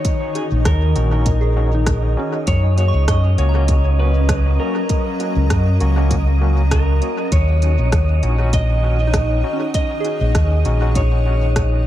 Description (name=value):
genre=ambient dub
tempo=99 BPM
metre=4/4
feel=swing 54% on 16ths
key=Eb minor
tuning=A4 = 438 Hz
part: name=clean lap steel guitar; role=melody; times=0.0-11.8 s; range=Ab4 to Eb5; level=-26 LUFS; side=left 2 dB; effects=dub echo
part: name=granular cloud pad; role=sustained chords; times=0.0-11.9 s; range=Eb3 to Bb5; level=-26 LUFS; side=left 2 dB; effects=built-in reverb
part: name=organic electronic drum kit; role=drums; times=0.0-11.7 s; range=hi-hat, rim click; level=-29 LUFS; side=equal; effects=small room ambience, dub echo
part: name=wind-like tuned noise texture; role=texture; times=0.0-11.9 s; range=Eb5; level=-29 LUFS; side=right 4 dB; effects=built-in reverb
part: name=electronic kick drum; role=drums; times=0.1-11.7 s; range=none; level=-20 LUFS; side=equal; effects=small room ambience
part: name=overdriven tine electric piano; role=stabs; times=0.4-11.4 s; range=Bb3 to Gb4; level=-30 LUFS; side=left 2 dB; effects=fast tremolo, dub echo
part: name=fingered electric bass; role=bass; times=0.5-11.8 s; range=Bb1 to Gb2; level=-15 LUFS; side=equal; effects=none
part: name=soft synth bell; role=arpeggios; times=1.4-11.9 s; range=Db4 to Db6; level=-29 LUFS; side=right 3 dB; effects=chorus, phaser, dub echo
room=little or no reverb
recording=echo-heavy mix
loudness=-14 LUFS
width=side -13 dB against mid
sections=0.0-11.9 A section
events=none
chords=0.0 Ebm7; 2.5 Gb; 7.3 Ebm7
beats=| 0.05 0.65 1.26 1.87 | 2.47 3.08 3.69 4.29 | 4.90 5.50 6.11 6.71 | 7.32 7.93 8.53 9.14 | 9.74 10.35 10.96 11.56